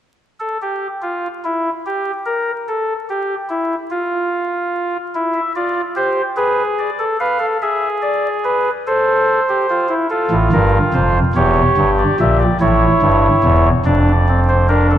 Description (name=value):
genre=classical, baroque-style 4-part fugue for pipe organ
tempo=48 BPM (dotted quarters)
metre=6/8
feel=straight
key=D minor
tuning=A4 = 440 Hz
part: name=chamber organ, soft reed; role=solo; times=0.4-15.0 s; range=E1 to E#5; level=-14 LUFS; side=equal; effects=none
room=wet concert hall reverb, RT60 2.1 s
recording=vinyl crackle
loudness=-14 LUFS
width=side -11 dB against mid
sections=0.2-15.0 A section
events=none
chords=0.2 N.C.; 5.2 Dm11/E; 6.4 G#dim7; 7.6 E7/G#; 8.9 Am; 10.1 Fadd9; 11.4 C#dim7/E; 12.6 A7; 13.9 Dm/F